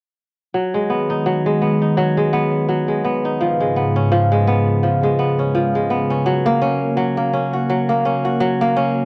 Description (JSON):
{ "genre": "folktronica", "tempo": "84 BPM", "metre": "4/4", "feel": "swing 56% on 16ths", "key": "G# dorian", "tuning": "A4 = 439 Hz", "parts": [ { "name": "warbly tape-like pad", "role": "sustained chords", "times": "0.5-9.1 s", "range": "G#2 to B4", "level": "-23 LUFS", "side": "equal", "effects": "chorus, built-in reverb" }, { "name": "kora", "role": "arpeggios", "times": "0.5-9.1 s", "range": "E#3 to F#4", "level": "-20 LUFS", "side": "equal", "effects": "low-pass filter" } ], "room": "light reverb", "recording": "dry, close 1970s-style studio recording", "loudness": "-18 LUFS", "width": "mono", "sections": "0.5-9.1 A section", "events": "filter sweep on ambient pad 0.5-9.1", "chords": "0.5 G#m7; 3.4 C#7/G#; 6.3 F#" }